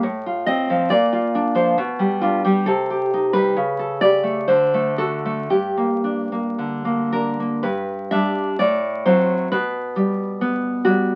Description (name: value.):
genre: romantic piece for solo classical guitar.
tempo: 54-70 BPM.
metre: 2/4.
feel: rubato.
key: G minor, G major from 7.6 s.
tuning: A4 = 440 Hz.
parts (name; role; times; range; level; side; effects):
nylon-string guitar; solo; 0.0-11.2 s; G2 to E5; -20 LUFS; equal; none.
room: moderate studio reverb, RT60 0.6 s.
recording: very old 78 rpm record, vinyl crackle.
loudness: -20 LUFS.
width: mono.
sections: 0.0-7.6 A section; 7.6-11.2 B section.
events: none.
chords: 0.0 F7/A; 0.9 Bb; 1.8 G/B; 2.7 Cm; 3.5 A7/C#; 4.5 D7; 5.5 Gm; 7.6 G; 8.6 D7/A; 9.5 G/B.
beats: | 0.03 0.90 | 1.77 2.66 | 3.54 4.49 | 5.50 6.58 | 7.64 8.60 | 9.52 10.40.